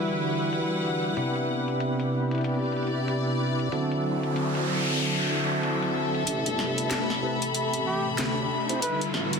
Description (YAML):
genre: glitch hop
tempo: 94 BPM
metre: 4/4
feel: swing 60% on 16ths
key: unclear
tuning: A4 = 437 Hz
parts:
  - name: warm analog pad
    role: sustained chords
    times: 0.0-9.4 s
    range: C3 to G4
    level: -31 LUFS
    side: equal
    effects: chorus
  - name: mellow tonewheel organ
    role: stabs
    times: 0.0-8.8 s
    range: C3 to C5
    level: -28 LUFS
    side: equal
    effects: overdrive, chorus vibrato, slow rotary speaker, low-pass filter, digital delay
  - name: dark studio string section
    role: texture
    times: 0.0-9.4 s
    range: D4 to B5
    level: -31 LUFS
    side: left 2 dB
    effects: none
  - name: drum and bass drum kit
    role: drums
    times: 0.1-9.4 s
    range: hi-hat, snare drum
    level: -32 LUFS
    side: equal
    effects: high-pass filter on hats, low-pass filter on hats, high-pass filter on snare, low-pass filter on snare, high-pass filter on room, low-pass filter on room
  - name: noise sweep and riser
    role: sound effects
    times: 4.1-9.4 s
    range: none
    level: -31 LUFS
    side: equal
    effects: none
  - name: phased detuned saw bass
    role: bass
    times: 6.3-9.4 s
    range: G1 to D2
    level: -34 LUFS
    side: equal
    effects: phaser, high-pass filter
  - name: breathy trumpet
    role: melody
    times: 7.9-9.0 s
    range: G4 to B4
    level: -34 LUFS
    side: equal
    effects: digital delay
room: moderate plate reverb, RT60 2.9 s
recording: dense, heavily limited modern master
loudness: -24 LUFS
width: side -5 dB against mid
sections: 0.0-6.3 A section; 6.3-9.4 B section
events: noise sweep 4.1-6.3; build-up 6.3-9.4; riser 6.3-9.4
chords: 0.0 Em7; 1.2 Cmaj7; 3.7 D9; 6.3 Am7; 8.8 Em7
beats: 0.53 | 1.17 1.80 2.44 3.08 | 3.72 4.36 5.00 5.63 | 6.27 6.91 7.55 8.19 | 8.82